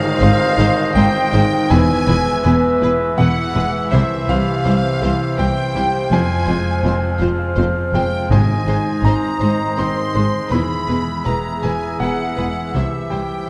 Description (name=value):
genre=cinematic, emotional film score for orchestra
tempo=81 BPM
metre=3/4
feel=rubato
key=unclear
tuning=A4 = 442 Hz
part: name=bright studio violin section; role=second line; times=0.0-13.5 s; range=E5 to C6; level=-31 LUFS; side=equal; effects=none
part: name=flute section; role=second line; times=0.0-13.5 s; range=E5 to C6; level=-29 LUFS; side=equal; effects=none
part: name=warm clarinet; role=second line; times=0.0-13.5 s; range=G4 to C5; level=-32 LUFS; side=equal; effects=none
part: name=warm oboe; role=second line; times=0.0-13.5 s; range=Eb5 to F5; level=-29 LUFS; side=equal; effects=none
part: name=bright concert grand piano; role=accompaniment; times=0.0-13.5 s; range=C2 to C6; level=-25 LUFS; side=equal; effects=none
part: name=mellow French horn section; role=sustained chords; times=0.0-13.5 s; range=Eb3 to C5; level=-27 LUFS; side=equal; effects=none
part: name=concert harp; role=arpeggios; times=0.0-13.5 s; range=F2 to C6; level=-28 LUFS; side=equal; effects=none
part: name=rich studio violin section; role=melody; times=0.2-13.5 s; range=B4 to C5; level=-34 LUFS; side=equal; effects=none
part: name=rich studio viola section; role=accompaniment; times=0.2-13.2 s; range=E3 to Ab4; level=-34 LUFS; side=equal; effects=none
part: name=rich studio double bass section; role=bass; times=0.2-13.2 s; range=E1 to C2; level=-24 LUFS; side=equal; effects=none
part: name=warm studio cello section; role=bass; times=0.2-13.2 s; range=C2 to Ab2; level=-24 LUFS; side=equal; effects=none
part: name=timpani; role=percussion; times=8.3-9.4 s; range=Ab2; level=-23 LUFS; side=equal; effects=none
room=wet scoring stage reverb, RT60 1.9 s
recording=dark, warm production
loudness=-17 LUFS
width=mono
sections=0.0-13.5 A section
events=none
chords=0.0 Ab; 1.7 E; 3.9 C; 6.1 Fm; 8.3 Ab; 10.5 E; 12.7 C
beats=0.21 0.95 | 1.70 2.44 3.18 | 3.92 4.65 5.38 | 6.11 6.84 7.57 | 8.30 9.04 9.77 | 10.52 11.26 12.00 | 12.73 13.48